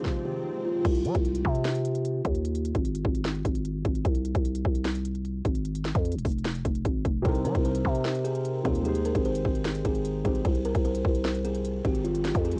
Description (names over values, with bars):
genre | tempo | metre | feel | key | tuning
hip hop, trap | 150 BPM | 4/4 | half-time | unclear | A4 = 437 Hz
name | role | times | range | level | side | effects
buzzing kalimba | melody | 0.0-0.8, 7.3-12.6 s | F4 to C5 | -35 LUFS | equal | cassette tape
dark grand piano | accompaniment | 0.0-0.8, 7.2-10.5 s | C3 to C5 | -35 LUFS | equal | none
trap drum kit | drums | 0.0-12.6 s | crash cymbal, hi-hat, kick drum, snare drum | -32 LUFS | equal | cassette tape
swell and riser | sound effects | 0.0-0.8, 11.6-12.6 s | none | -44 LUFS | equal | none
growling 808-style bass | bass | 0.8-12.6 s | Eb1 to G3 | -31 LUFS | equal | none
room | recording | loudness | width
little or no reverb | home recording on cassette, nothing above 10.8 kHz | -28 LUFS | mono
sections
0.8-12.6 A section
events
swell 0.0-0.8; stop 0.0-0.8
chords
0.0 Fm7; 0.8 Cm; 2.4 Ab5; 4.0 Ab; 5.6 Fm; 7.2 Cm7; 8.8 Abmaj7; 10.4 Ab; 12.0 Fm